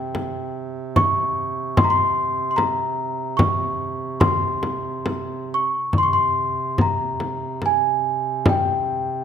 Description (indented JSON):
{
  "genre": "caucasian folk, Caucasian lament",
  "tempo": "73 BPM",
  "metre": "3/4",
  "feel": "rubato",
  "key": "unclear",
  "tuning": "A4 = 439 Hz",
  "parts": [
    { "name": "large celesta", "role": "melody", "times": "0.0-9.2 s", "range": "G5 to Db6", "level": "-21 LUFS", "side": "equal", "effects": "none" },
    { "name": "warm duduk", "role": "drone", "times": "0.0-9.2 s", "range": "C3", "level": "-30 LUFS", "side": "right 5 dB", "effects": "none" },
    { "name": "frame drum", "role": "percussion", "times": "0.1-8.7 s", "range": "none", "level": "-22 LUFS", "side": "left 1 dB", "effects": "none" }
  ],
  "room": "moderate recital hall reverb, RT60 1.5 s",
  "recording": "none",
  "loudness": "-19 LUFS",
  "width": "side -8 dB against mid",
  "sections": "0.0-5.9 A section; 5.9-9.2 B section",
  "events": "none",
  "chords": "none"
}